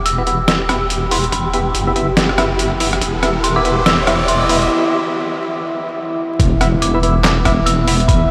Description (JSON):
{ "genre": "deep dubstep", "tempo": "142 BPM", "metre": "4/4", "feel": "swing 59% on 16ths, half-time", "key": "E minor", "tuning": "A4 = 440 Hz", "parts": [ { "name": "dark detuned synth bell", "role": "melody", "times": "0.0-8.3 s", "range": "B5 to E6", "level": "-24 LUFS", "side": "equal", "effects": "chorus, dub echo" }, { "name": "deep dark ambient pad", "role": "sustained chords", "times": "1.7-8.3 s", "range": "E4 to E5", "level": "-27 LUFS", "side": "equal", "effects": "chorus, built-in reverb" }, { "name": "deep soft wobble bass", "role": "bass", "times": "0.0-8.3 s", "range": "E1 to F#1", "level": "-21 LUFS", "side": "equal", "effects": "chorus" }, { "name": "riser and impact", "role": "sound effects", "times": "1.1-8.1 s", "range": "none", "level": "-27 LUFS", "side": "equal", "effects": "none" }, { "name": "flickering grainy texture", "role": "texture", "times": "0.0-8.3 s", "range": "B3 to G4", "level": "-27 LUFS", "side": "equal", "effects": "built-in reverb, subtle chorus" }, { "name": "trip hop sampler-style drum kit", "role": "drums", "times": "0.1-8.2 s", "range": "handclaps, hi-hat, rim click, snare drum", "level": "-22 LUFS", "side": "equal", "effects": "none" }, { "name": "percussive organ stab", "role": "stabs", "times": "0.2-7.9 s", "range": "B3 to E5", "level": "-24 LUFS", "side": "equal", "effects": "chorus, dub echo" }, { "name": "electronic kick drum", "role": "drums", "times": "1.3-3.1, 6.4-8.2 s", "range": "none", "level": "-19 LUFS", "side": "equal", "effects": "high-pass filter on kick" } ], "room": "wet huge ambient reverb, RT60 7.9 s", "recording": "dreamy mix soaked in reverb, vinyl crackle", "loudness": "-16 LUFS", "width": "mono", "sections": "0.0-6.4 A section; 6.4-8.3 B section", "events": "build-up 0.0-6.4; filter sweep on ambient pad 0.0-6.4; riser 1.1-4.7; break 4.7-6.4; drop 6.4-8.3; impact 6.4-8.1", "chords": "0.0 E5" }